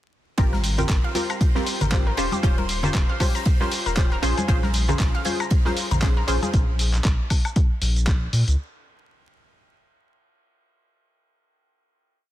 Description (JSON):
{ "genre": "deep house", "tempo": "117 BPM", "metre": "4/4", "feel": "swing 57% on 16ths", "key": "Bb dorian", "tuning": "A4 = 440 Hz", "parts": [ { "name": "filtered dub chord stab", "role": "stabs", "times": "0.4-6.5 s", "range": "C4 to C5", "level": "-27 LUFS", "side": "equal", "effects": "analog chorus, sidechain pumping, digital delay" }, { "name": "round analog bass", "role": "bass", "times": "0.4-8.6 s", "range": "Eb1 to Bb2", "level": "-24 LUFS", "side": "equal", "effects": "sidechain pumping" }, { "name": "dusty soul sampler-style drum kit", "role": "drums", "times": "0.4-8.6 s", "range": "handclaps, hi-hat, shaker, woodblock", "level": "-29 LUFS", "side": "left 1 dB", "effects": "none" }, { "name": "electronic kick drum", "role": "drums", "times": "0.4-8.2 s", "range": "none", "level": "-20 LUFS", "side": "equal", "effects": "none" }, { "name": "huge arena drum kit", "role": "drums", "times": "0.4-6.4 s", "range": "hi-hat, ride cymbal, snare drum", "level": "-38 LUFS", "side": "right 2 dB", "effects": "high-pass filter on cymbals, high-pass filter on hats, high-pass filter on snare, high-pass filter on room" }, { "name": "analog string pad", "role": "texture", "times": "0.4-6.5 s", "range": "C5 to C6", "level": "-38 LUFS", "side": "left 1 dB", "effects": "ensemble chorus, sidechain pumping" }, { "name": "analog pluck", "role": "arpeggios", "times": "0.5-6.5 s", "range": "G4 to Bb5", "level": "-33 LUFS", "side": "left 3 dB", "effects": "chorus, sidechain pumping, digital delay" }, { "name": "congas", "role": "percussion", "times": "0.5-6.5 s", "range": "none", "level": "-30 LUFS", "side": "left 1 dB", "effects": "none" } ], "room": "small room ambience", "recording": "dense, heavily limited modern master, vinyl crackle", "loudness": "-19 LUFS", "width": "side -14 dB against mid", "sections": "0.4-8.6 drop", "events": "drop 0.4-8.6", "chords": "0.4 Abmaj13; 2.2 Eb13; 4.2 Bbm9", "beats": "| 0.38 0.89 1.41 1.92 | 2.43 2.95 3.46 3.97 | 4.48 5.00 5.51 6.02 | 6.54 7.05 7.56 8.07" }